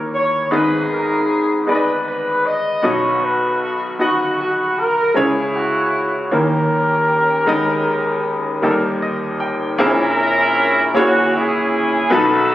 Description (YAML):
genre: gospel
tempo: 52 BPM (dotted quarters)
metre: 6/8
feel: straight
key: unclear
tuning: A4 = 440 Hz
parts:
  - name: bright baby grand piano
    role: accompaniment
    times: 0.0-12.5 s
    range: G#1 to G5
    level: -18 LUFS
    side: left 1 dB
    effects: none
  - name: mellow horn section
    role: melody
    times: 0.1-12.5 s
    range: C#4 to D#5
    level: -17 LUFS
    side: equal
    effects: none
room: wet recital hall reverb, RT60 1.3 s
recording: recorded on a phone in the room, studio ambience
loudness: -15 LUFS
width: side -14 dB against mid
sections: 0.0-9.8 A section; 9.8-12.5 B section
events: grand piano fill 8.6-9.8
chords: 0.0 D#; 0.5 G#m; 2.8 B; 5.2 C#m; 6.3 D#7; 7.5 G#m/D#; 8.6 D#; 9.8 A#m7b5